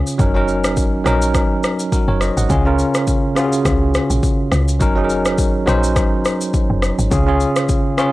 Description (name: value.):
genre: afrobeats.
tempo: 104 BPM.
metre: 4/4.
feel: swing 55% on 16ths.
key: unclear.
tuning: A4 = 437 Hz.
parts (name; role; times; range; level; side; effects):
bell-like tine electric piano; accompaniment; 0.0-8.1 s; Db3 to Gb5; -17 LUFS; equal; medium stereo tremolo.
woody log drum bass; bass; 0.0-7.5 s; Gb1 to Db2; -19 LUFS; equal; none.
afro-pop drum kit; drums; 0.1-8.1 s; kick drum, rim click, shaker; -19 LUFS; equal; overdrive.
room: digital ambience.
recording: dry, gritty hardware recording, cassette tape.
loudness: -14 LUFS.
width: side -18 dB against mid.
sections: 0.0-8.1 A section.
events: break 0.0; tine electric piano fill 7.7-8.1.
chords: 0.2 Gb6; 2.5 Db; 4.8 Gb6; 7.1 Db.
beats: | 0.19 0.77 1.35 1.92 | 2.50 3.08 3.65 4.23 | 4.81 5.38 5.96 6.54 | 7.12 7.69.